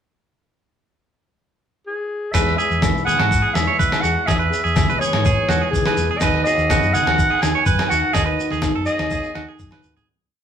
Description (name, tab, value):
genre	highlife guitar band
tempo	124 BPM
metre	4/4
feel	straight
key	E major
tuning	A4 = 440 Hz
part	growling clarinet	melody	1.9-9.5 s	G#4 to G#5	-21 LUFS	equal	none
part	nylon-string guitar	accompaniment	2.3-10.1 s	E2 to G#4	-27 LUFS	left 2 dB	none
part	clean electric guitar	arpeggios	2.3-10.1 s	F#4 to C#5	-22 LUFS	right 6 dB	none
part	hollow-body short-scale fingered electric bass	bass	2.3-9.9 s	B1 to G#2	-24 LUFS	equal	none
part	lo-fi sampler-style drum kit	drums	2.3-9.8 s	kick drum, snare drum	-22 LUFS	equal	none
part	agogo bells	percussion	2.3-9.8 s	none	-31 LUFS	left 2 dB	none
part	congas	percussion	2.3-10.1 s	none	-30 LUFS	left 3 dB	none
part	shekere	percussion	2.3-10.0 s	none	-30 LUFS	left 2 dB	none
room	wet studio reverb, RT60 0.8 s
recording	band playing live in one room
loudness	-16 LUFS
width	side -8 dB against mid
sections	0.4-2.3 pickup bar; 2.3-10.1 groove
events	fade-out 8.1-10.1; drum fill 9.6-10.1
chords	0.4 N.C.; 2.3 E; 6.2 B/D#